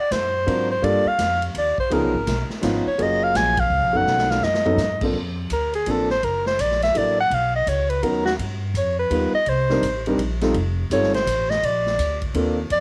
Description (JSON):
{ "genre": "jazz, small-group swing and bop", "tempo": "167 BPM", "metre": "3/4", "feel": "swing 64% on 8ths", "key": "unclear", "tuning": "A4 = 442 Hz", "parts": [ { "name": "mellow soprano saxophone", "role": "melody", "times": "0.0-12.8 s", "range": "F#4 to Ab5", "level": "-23 LUFS", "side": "equal", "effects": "cassette tape" }, { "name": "upright bass", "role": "bass", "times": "0.1-12.8 s", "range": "F1 to Ab2", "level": "-29 LUFS", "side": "equal", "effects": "none" }, { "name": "swinging big-band drum kit", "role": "drums", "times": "0.1-12.8 s", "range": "crash cymbal, hi-hat, kick drum, ride cymbal, snare drum, toms", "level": "-33 LUFS", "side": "equal", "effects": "none" }, { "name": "warm concert grand piano", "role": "accompaniment", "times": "0.5-12.6 s", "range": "F3 to A#4", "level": "-26 LUFS", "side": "equal", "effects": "cassette tape" } ], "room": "light reverb, small room ambience", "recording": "home recording on cassette", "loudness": "-21 LUFS", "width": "mono", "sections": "0.0-5.1 A section; 5.1-12.8 B section", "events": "band accent 3.5; drum fill 4.1-4.8; soprano saxophone solo 5.1-12.8", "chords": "0.0 D7alt; 0.8 Gm9; 1.9 Db9; 3.0 Gbmaj9; 4.1 B9; 5.1 Bbmaj9; 6.2 Gb7alt; 7.3 Bmaj9; 8.4 G7alt; 9.5 Cm9; 10.5 F9; 11.6 Bbmaj9" }